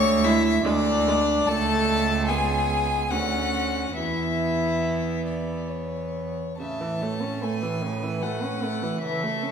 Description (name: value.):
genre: classical, slow romantic movement for string quartet.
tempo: 64-76 BPM.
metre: 3/4.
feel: rubato.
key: A major.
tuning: A4 = 440 Hz.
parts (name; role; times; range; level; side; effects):
rich violin; melody; 0.0-9.5 s; C#5 to C#6; -28 LUFS; left 5 dB; none.
warm violin; second line; 0.0-9.5 s; D4 to E5; -28 LUFS; left 2 dB; none.
rich cello; bass; 0.0-9.5 s; C#2 to C#3; -27 LUFS; right 4 dB; none.
warm viola; accompaniment; 0.2-9.5 s; C#3 to C#4; -29 LUFS; right 3 dB; none.
room: wet recital hall reverb, RT60 1.7 s.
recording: recorded in a church or concert hall.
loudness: -22 LUFS.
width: side -7 dB against mid.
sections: 0.0-6.6 A section; 6.6-9.5 B section.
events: none.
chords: 0.0 E7/D; 1.5 A/C#; 3.1 Dmaj7; 4.0 E5; 6.6 A.